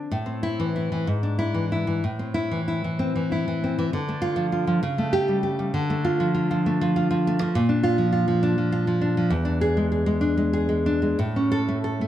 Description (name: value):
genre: romantic piece for solo classical guitar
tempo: 58-70 BPM (dotted quarters)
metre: 6/8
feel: rubato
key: A minor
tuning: A4 = 440 Hz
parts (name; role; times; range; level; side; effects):
- nylon-string guitar; solo; 0.0-12.1 s; E2 to A4; -21 LUFS; equal; none
room: moderate recital hall reverb, RT60 1.6 s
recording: none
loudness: -21 LUFS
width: side -12 dB against mid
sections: 0.1-12.1 A section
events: none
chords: 0.1 Am; 1.1 E7/G#; 2.0 Am; 3.9 Dm; 4.8 A7/C#; 5.7 Dm; 7.5 Bb; 9.3 E7; 11.2 A